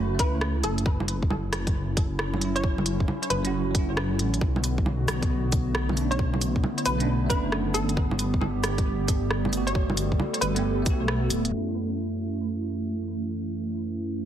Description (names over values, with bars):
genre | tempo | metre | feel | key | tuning
future garage | 135 BPM | 4/4 | swing 65% on 16ths | F# phrygian | A4 = 444 Hz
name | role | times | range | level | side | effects
bell-like tine electric piano | accompaniment | 0.0-14.3 s | F#2 to G4 | -30 LUFS | right 2 dB | phaser, sidechain pumping, tape echo
dark detuned saw bass | bass | 0.0-11.5 s | D1 to C#2 | -28 LUFS | equal | sidechain pumping
hollow square pluck | melody | 0.2-10.7 s | A4 to C#5 | -32 LUFS | left 1 dB | ensemble chorus, cassette tape, tape echo
electronic kick drum | drums | 0.2-11.0 s | none | -26 LUFS | equal | studio reverb
organic electronic drum kit | drums | 0.2-11.5 s | bongos, cabasa, hi-hat, rim click | -29 LUFS | right 1 dB | studio reverb
warbly tape-like pad | sustained chords | 0.9-14.3 s | D3 to A4 | -32 LUFS | equal | chorus, built-in reverb, sidechain pumping
room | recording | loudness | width
light reverb, digital ambience | heavily compressed radio sound, low-pass filter | -24 LUFS | side -10 dB against mid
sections
0.0-11.5 A section; 11.5-14.3 B section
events
filter sweep on ambient pad 11.5-14.3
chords
0.0 F#m7; 0.9 Dmaj9/F#; 4.4 Bm7; 8.0 Gmaj9; 11.5 F#m7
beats
0.41 | 0.86 1.30 1.75 2.19 | 2.64 3.08 3.53 3.97 | 4.42 4.86 5.30 5.75 | 6.19 6.64 7.08 7.53 | 7.97 8.41 8.86 9.30 | 9.75 10.19 10.64 11.08 | 11.53 11.97 12.41 12.86 | 13.30 13.75 14.19